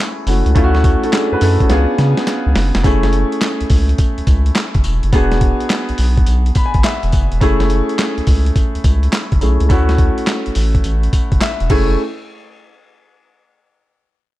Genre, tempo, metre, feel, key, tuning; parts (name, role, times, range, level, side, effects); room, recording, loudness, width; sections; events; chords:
R&B, new jack swing; 105 BPM; 4/4; swing 67% on 16ths; F# minor; A4 = 440 Hz
warm baby grand piano; accompaniment; 0.0-12.0 s; A3 to B5; -18 LUFS; equal
round analog bass; bass; 0.3-12.0 s; E1 to C#3; -15 LUFS; equal
boom bap sampler-style drum kit; drums; 0.3-11.9 s; crash cymbal, handclaps, hi-hat, kick drum, snare drum, tambourine; -16 LUFS; equal
group handclap; percussion; 1.1-12.0 s; -34 LUFS; right 2 dB
little or no reverb; dark, warm production; -12 LUFS; side -16 dB against mid
0.0-2.8 A section; 2.8-12.0 B section; 12.0-14.3 C section
drum fill 1.7-2.8; grand piano fill 6.3-7.4, 11.1-12.0
0.0 F#m9; 0.6 Dmaj9; 1.7 C#7b9; 2.8 F#m9; 5.1 E9; 7.4 F#m9; 9.7 Dmaj9; 11.7 F#m9; 12.0 N.C.